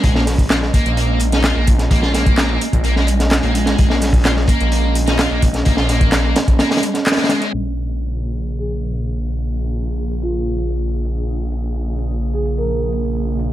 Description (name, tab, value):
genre	breakbeat, breaks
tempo	128 BPM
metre	4/4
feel	straight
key	Bb minor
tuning	A4 = 440 Hz
part	warbly tape-like pad	sustained chords	0.0-13.5 s	Db3 to Eb5	-26 LUFS	right 3 dB	chorus, built-in reverb, sidechain pumping
part	thick fuzz guitar	riff	0.0-7.5 s	Ab3 to F4	-22 LUFS	equal	distortion, tube saturation, vintage 12-bit sampler grit, dub echo
part	phased detuned saw bass	bass	0.0-13.5 s	Bb1	-19 LUFS	equal	phaser
part	crunchy breakbeat drum kit	drums	0.0-7.5 s	hi-hat, kick drum, snare drum	-16 LUFS	equal	none
part	garage drum kit	drums	0.0-13.5 s	handclaps, hi-hat	-25 LUFS	equal	overdrive, low-pass filter on hats, low-pass filter on snare
part	marimba with soft mallets	melody	8.6-12.8 s	F4 to Bb4	-27 LUFS	right 1 dB	small speaker sound, dub echo
room	small room ambience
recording	vinyl crackle, low-pass filter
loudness	-15 LUFS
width	side -13 dB against mid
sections	0.0-7.5 A section; 7.5-13.5 B section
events	band accent 7.1; filter sweep 7.5-13.5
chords	0.0 Bbm7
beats	| 0.04 0.50 0.97 1.44 | 1.91 2.38 2.85 3.32 | 3.79 4.25 4.72 5.19 | 5.66 6.13 6.60 7.07 | 7.54 8.00 8.47 8.94 | 9.41 9.88 10.35 10.82 | 11.29 11.75 12.22 12.69 | 13.16